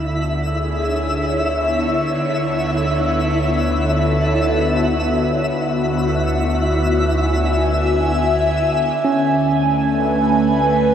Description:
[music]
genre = ambient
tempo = free time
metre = none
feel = none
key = unclear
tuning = A4 = 440 Hz
[part]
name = airy breathy pad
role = sustained chords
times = 0.0-10.9 s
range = D3 to G#5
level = -19 LUFS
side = equal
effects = chorus, phaser
[part]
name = warm sub bass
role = bass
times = 0.0-10.9 s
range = D2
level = -24 LUFS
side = equal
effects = tube saturation
[part]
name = bowed-like drone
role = drone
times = 0.0-9.1 s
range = D3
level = -27 LUFS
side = left 1 dB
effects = built-in reverb, phaser
[part]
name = twinkling granular texture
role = texture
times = 0.0-10.9 s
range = E4 to E5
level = -22 LUFS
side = equal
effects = built-in reverb
[part]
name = tine electric piano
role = arpeggios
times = 9.0-10.9 s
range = C#4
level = -20 LUFS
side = left 1 dB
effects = medium stereo tremolo, diffuse ambient delay
[sound]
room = wet huge ambient reverb, RT60 7.9 s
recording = none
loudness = -16 LUFS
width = side -9 dB against mid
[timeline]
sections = 0.0-9.0 A section; 9.0-10.9 B section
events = fade-in on analog synth pad 0.0-9.0; fade-in on sub bass 0.0-9.0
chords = 0.0 C#m7/D; 2.2 Bm7/D; 5.6 E7/D; 9.0 Amaj7/D

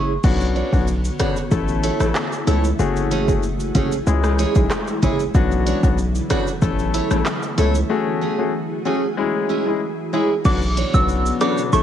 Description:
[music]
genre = dancehall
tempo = 94 BPM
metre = 4/4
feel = straight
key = B dorian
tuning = A4 = 436 Hz
[part]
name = soft synth bell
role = melody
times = 0.0-0.1, 10.5-11.8 s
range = C#6 to E6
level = -23 LUFS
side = right 3 dB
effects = chorus, cassette tape, analog delay
[part]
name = warm grand piano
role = accompaniment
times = 0.0-11.8 s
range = G#3 to A4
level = -23 LUFS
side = left 8 dB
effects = sidechain pumping, cassette tape
[part]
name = picked steel-string acoustic guitar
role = arpeggios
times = 0.0-11.6 s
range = A3 to C#5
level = -25 LUFS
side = right 9 dB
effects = cassette tape
[part]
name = hard-hitting 808-style bass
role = bass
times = 0.0-11.8 s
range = F#1 to C#2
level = -20 LUFS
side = equal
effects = none
[part]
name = ethereal airy pad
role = sustained chords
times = 0.7-11.8 s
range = B2 to C#5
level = -27 LUFS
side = equal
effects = ensemble chorus, built-in reverb, sidechain pumping, cassette tape
[part]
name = afro-pop drum kit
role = drums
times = 0.2-11.8 s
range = crash cymbal, handclaps, hi-hat, kick drum, rim click, shaker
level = -22 LUFS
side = equal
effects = none
[part]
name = maracas and timbales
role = percussion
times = 0.2-11.8 s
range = none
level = -41 LUFS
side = right 11 dB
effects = none
[sound]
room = light reverb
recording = home recording on cassette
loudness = -17 LUFS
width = side -10 dB against mid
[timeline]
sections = 0.2-10.5 A section; 10.5-11.8 B section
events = break 0.0, 7.9-10.5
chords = 0.2 Bmadd9; 1.5 A; 2.8 F#madd9; 4.1 C#m; 5.3 Bmadd9; 6.6 A; 7.9 F#madd9; 9.2 C#m; 10.5 Bmadd9

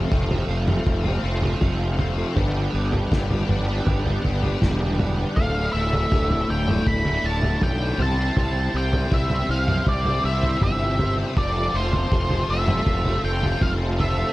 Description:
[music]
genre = psychedelic rock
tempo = 80 BPM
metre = 4/4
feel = straight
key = unclear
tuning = A4 = 440 Hz
[part]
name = tonewheel organ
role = sustained chords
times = 0.0-14.3 s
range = C4 to A5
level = -35 LUFS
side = right 4 dB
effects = slow rotary speaker, overdrive, chorus vibrato
[part]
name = cranked stack guitar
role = riff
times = 0.0-14.3 s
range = D2 to C5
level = -26 LUFS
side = left 1 dB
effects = overdrive, rotary speaker, analog delay
[part]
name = fuzz fingered electric bass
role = bass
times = 0.0-14.2 s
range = D1 to C2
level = -24 LUFS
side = equal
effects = overdrive
[part]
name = cloth-damped thuddy drum kit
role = drums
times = 0.1-14.2 s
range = kick drum, snare drum, toms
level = -24 LUFS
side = equal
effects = none
[part]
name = octave-fuzz lead guitar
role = melody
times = 5.4-14.3 s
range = C5 to B5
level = -26 LUFS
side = equal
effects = distortion, analog delay
[sound]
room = small room ambience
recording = echo-heavy mix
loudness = -20 LUFS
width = side -18 dB against mid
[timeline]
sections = 0.0-14.3 A section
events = none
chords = 0.0 F; 2.4 G; 5.4 Dsus2; 8.0 C; 11.4 F

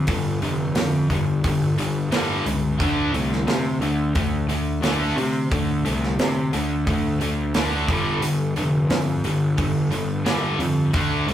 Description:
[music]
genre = hard rock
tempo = 88 BPM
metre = 4/4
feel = straight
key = unclear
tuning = A4 = 440 Hz
[part]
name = tight distorted guitar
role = riff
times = 0.0-11.3 s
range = G2 to D4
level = -25 LUFS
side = left 4 dB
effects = distortion
[part]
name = tight distorted guitar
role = riff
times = 0.0-11.3 s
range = G2 to D4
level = -27 LUFS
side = right 3 dB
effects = distortion
[part]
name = fuzz picked electric bass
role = bass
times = 0.0-11.3 s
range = F1 to C3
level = -24 LUFS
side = equal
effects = overdrive
[part]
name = big rock drum kit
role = drums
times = 0.1-11.3 s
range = hi-hat, kick drum, snare drum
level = -26 LUFS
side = right 1 dB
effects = none
[sound]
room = moderate studio reverb, RT60 0.6 s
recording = rough rehearsal-room recording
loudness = -20 LUFS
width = side -11 dB against mid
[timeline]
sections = 0.0-11.3 A section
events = none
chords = 0.0 G5; 2.8 D5; 7.9 G5

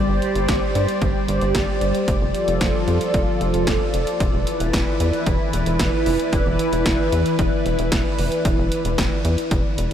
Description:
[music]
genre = synth-pop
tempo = 113 BPM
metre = 4/4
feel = straight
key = unclear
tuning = A4 = 439 Hz
[part]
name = lush unison pad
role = sustained chords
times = 0.0-9.9 s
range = E3 to D5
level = -21 LUFS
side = equal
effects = chorus, phaser
[part]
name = rubbery square bass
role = bass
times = 0.0-9.9 s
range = E1 to G2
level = -23 LUFS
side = equal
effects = none
[part]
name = punchy analog drum machine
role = drums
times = 0.2-9.9 s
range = hi-hat, kick drum, snare drum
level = -23 LUFS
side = equal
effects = overdrive
[sound]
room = moderate huge ambient reverb, RT60 8.2 s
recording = dreamy mix soaked in reverb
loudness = -18 LUFS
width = side -9 dB against mid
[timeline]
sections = 0.0-9.9 A section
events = none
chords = 0.0 Gsus4; 2.1 F6; 4.2 Dsus2/E

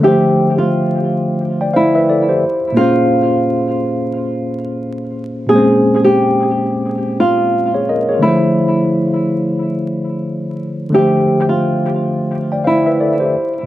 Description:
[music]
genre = hip hop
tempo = 88 BPM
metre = 4/4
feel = swing 58% on 16ths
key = unclear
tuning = A4 = 440 Hz
[part]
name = flamenco guitar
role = melody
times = 0.0-13.2 s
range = E4 to Ab4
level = -16 LUFS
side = equal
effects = high-pass filter, low-pass filter, tape echo
[part]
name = mellow tine electric piano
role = accompaniment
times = 0.0-13.7 s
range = Bb2 to G5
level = -15 LUFS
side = equal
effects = medium stereo tremolo, high-pass filter, low-pass filter
[sound]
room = wet spring reverb, RT60 2.5 s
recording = echo-heavy mix, vinyl crackle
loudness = -13 LUFS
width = side -14 dB against mid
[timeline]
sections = 0.0-8.2 A section; 8.2-13.7 B section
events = none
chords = 0.0 Dm9; 2.4 Bbm9; 8.2 Dm9

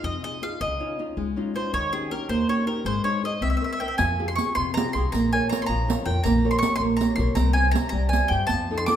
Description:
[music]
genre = italian folk, Italian serenade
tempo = 106 BPM (dotted quarters)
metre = 6/8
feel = straight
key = F harmonic minor from 4.0 s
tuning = A4 = 436 Hz
[part]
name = bowl-back mandolin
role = melody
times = 0.0-9.0 s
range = Ab4 to D6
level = -26 LUFS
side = right 1 dB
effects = none
[part]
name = nylon-string guitar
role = accompaniment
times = 0.0-9.0 s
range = C3 to E5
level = -26 LUFS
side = equal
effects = none
[part]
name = upright bass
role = bass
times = 0.0-8.9 s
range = Ab1 to G2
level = -26 LUFS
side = left 1 dB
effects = none
[part]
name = riq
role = percussion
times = 4.0-9.0 s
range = none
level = -29 LUFS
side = right 5 dB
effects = none
[sound]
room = wet recital hall reverb, RT60 1.6 s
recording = minimal, uncompressed stereo recording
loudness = -21 LUFS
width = side -10 dB against mid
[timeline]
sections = 0.0-4.0 A section; 4.0-9.0 B section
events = none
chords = 0.0 Fm7; 0.6 Dbadd9; 1.7 Eb7; 2.9 Ab; 3.4 C7; 4.0 Fmadd9; 5.1 Bbm; 6.2 Gdim/Bb; 7.4 C

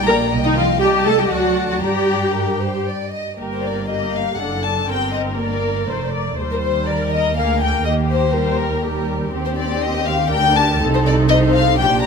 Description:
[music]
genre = quick classical-period movement for string orchestra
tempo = 121 BPM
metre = 3/4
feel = straight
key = G minor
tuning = A4 = 439 Hz
[part]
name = warm chamber violin section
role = melody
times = 0.0-12.1 s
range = Bb4 to Bb5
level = -21 LUFS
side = left 8 dB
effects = none
[part]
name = warm chamber violin section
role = second line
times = 0.0-12.1 s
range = G4 to Bb5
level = -26 LUFS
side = left 1 dB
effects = none
[part]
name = warm chamber cello section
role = bass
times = 0.0-12.1 s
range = D2 to Bb3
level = -24 LUFS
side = right 3 dB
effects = none
[part]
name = warm chamber double bass section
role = bass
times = 0.0-12.1 s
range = F1 to G2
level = -23 LUFS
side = right 2 dB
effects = none
[part]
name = rich symphonic viola section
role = accompaniment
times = 0.1-12.1 s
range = G3 to D5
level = -21 LUFS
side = equal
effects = none
[sound]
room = moderate concert hall reverb, RT60 2.0 s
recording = close, detailed microphones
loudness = -16 LUFS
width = side -5 dB against mid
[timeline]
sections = 0.0-3.4 A section; 3.4-12.1 A section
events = none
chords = 0.3 Cm; 0.8 Adim/C; 1.3 D; 1.8 Gm; 4.4 D/F#; 4.9 Gm; 6.4 Eb; 7.4 Bb7/D; 7.9 Eb; 9.3 Cm/Eb; 10.3 Bb/D; 10.8 Adim/C

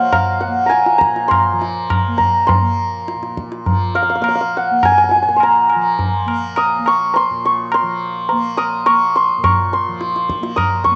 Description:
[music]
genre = indian classical, Hindustani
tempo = 103 BPM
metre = 4/4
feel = straight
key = Bb raga darbari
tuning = A4 = 440 Hz
[part]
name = santur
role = melody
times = 0.0-11.0 s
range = C5 to Eb6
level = -17 LUFS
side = equal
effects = cassette tape
[part]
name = tanpura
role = drone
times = 0.0-11.0 s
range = Bb2 to Bb3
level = -30 LUFS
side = equal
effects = cassette tape
[part]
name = tabla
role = percussion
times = 0.1-11.0 s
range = none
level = -22 LUFS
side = equal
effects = none
[sound]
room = moderate spring reverb, RT60 1.2 s, studio reverb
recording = home recording on cassette, nothing above 8.0 kHz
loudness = -16 LUFS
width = mono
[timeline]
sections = 0.0-11.0 A section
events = speeding up 0.0-11.0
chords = none

